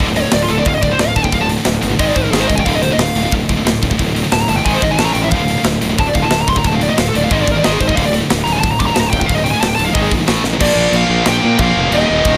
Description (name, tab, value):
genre	heavy metal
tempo	181 BPM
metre	4/4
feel	straight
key	D phrygian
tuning	A4 = 441 Hz
part	heavy high-gain guitar	riff	0.0-12.4 s	D2 to Bb3	-23 LUFS	equal	distortion
part	scooped high-gain guitar	riff	0.0-12.4 s	D2 to Bb3	-22 LUFS	equal	distortion
part	fuzz fingered electric bass	bass	0.0-12.4 s	D1 to Bb2	-22 LUFS	equal	overdrive
part	tight metal drum kit	drums	0.0-12.3 s	crash cymbal, hi-hat, kick drum, snare drum	-21 LUFS	equal	none
part	high-gain lead guitar	melody	0.2-12.4 s	F4 to D6	-20 LUFS	equal	distortion
room	light reverb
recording	none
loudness	-14 LUFS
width	mono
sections	0.0-10.6 A section; 10.6-12.4 B section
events	lead electric guitar solo 0.0-10.6; drum fill 10.4; half time 10.6-12.4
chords	0.0 D5; 2.0 G#5; 2.7 D5; 4.7 G#5; 5.0 A5; 5.3 Dm; 7.3 G#5; 8.0 D5; 10.0 G#5; 10.3 A5; 10.6 Bb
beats	| 0.01 0.34 0.68 1.01 | 1.34 1.67 2.00 2.34 | 2.67 3.00 3.33 3.67 | 4.00 4.33 4.66 4.99 | 5.33 5.66 5.99 6.32 | 6.65 6.98 7.31 7.64 | 7.97 8.30 8.63 8.96 | 9.29 9.62 9.95 10.28 | 10.61 10.94 11.27 11.60 | 11.92 12.25